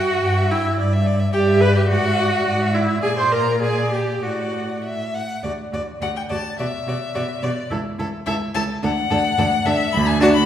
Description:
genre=quick classical-period movement for string quartet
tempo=97-110 BPM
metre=2/4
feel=rubato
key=D major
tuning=A4 = 443 Hz
part: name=clear violin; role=melody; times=0.0-10.5 s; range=D5 to C6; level=-25 LUFS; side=left 5 dB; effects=none
part: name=clear violin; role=second line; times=0.0-10.3 s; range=F#4 to G5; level=-26 LUFS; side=left 2 dB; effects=none
part: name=rich viola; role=accompaniment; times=0.0-10.3 s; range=D4 to C5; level=-22 LUFS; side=right 1 dB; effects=none
part: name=rich cello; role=bass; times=0.0-10.4 s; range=C#2 to B2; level=-22 LUFS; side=right 1 dB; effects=none
room=wet recital hall reverb, RT60 1.7 s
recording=heard from further back in the room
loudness=-18 LUFS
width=side -10 dB against mid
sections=0.0-5.4 A section; 5.4-10.5 B section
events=none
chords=0.0 Em/G; 0.8 Em7/G; 1.9 E7/G#; 3.0 Bb13; 4.2 D/A; 4.8 A5; 5.4 D; 6.6 Bm; 7.7 A/C#; 8.8 D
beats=0.22 | 0.77 1.33 | 1.90 2.46 | 3.02 3.62 | 4.23 4.84 | 5.44 6.01 | 6.59 7.15 | 7.71 8.27 | 8.83 9.38 | 9.93

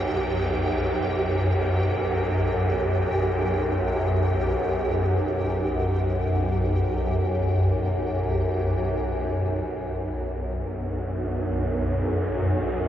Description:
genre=dark ambient drone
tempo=free time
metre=none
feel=none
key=B minor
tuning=A4 = 437 Hz
part: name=swarming drone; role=drone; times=0.0-12.9 s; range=B1 to F#2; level=-23 LUFS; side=equal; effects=built-in reverb
part: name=flickering grainy texture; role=texture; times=0.0-8.8 s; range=G4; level=-30 LUFS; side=right 1 dB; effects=built-in reverb
part: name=granular cloud pad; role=sustained chords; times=9.9-12.9 s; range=B3 to F#5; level=-36 LUFS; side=equal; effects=built-in reverb
room=wet huge ambient reverb, RT60 8.4 s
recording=dark, warm production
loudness=-22 LUFS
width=side -11 dB against mid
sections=0.0-8.8 A section; 8.8-12.9 B section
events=none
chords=0.0 Gmaj7/B; 8.8 Bmadd9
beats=free time

